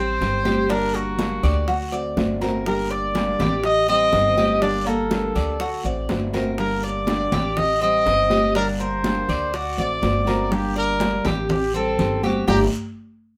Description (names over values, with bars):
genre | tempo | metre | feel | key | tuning
latin, Cuban son and guajira | 122 BPM | 4/4 | straight | G minor | A4 = 440 Hz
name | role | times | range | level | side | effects
warm trumpet | melody | 0.0-12.6 s | F#4 to Eb5 | -24 LUFS | equal | none
nylon-string guitar | accompaniment | 0.0-12.6 s | D3 to G4 | -29 LUFS | equal | none
Cuban tres | arpeggios | 0.0-12.6 s | Bb3 to D5 | -29 LUFS | equal | none
upright bass | bass | 0.0-12.7 s | G1 to D2 | -30 LUFS | equal | none
bongos | percussion | 0.2-12.6 s | none | -34 LUFS | equal | none
congas | percussion | 0.2-12.6 s | none | -29 LUFS | equal | none
guiro | percussion | 0.2-12.6 s | none | -42 LUFS | equal | none
room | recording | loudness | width
moderate studio reverb, RT60 0.6 s | band playing live in one room | -21 LUFS | mono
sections
0.0-13.4 A section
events
band accent 12.5-13.4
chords
0.0 Am7b5; 0.7 Gm; 1.7 D7; 2.7 Gm; 3.6 Am7b5; 4.6 Gm; 5.6 D7; 6.6 Gm; 7.6 Am7b5; 8.6 Gm; 9.5 D7; 10.5 Gm; 11.5 Am7b5; 12.5 Gm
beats
0.21 | 0.70 1.19 1.68 2.17 | 2.66 3.15 3.64 4.13 | 4.62 5.11 5.60 6.09 | 6.59 7.08 7.57 8.06 | 8.55 9.04 9.53 10.02 | 10.52 11.01 11.50 11.99 | 12.48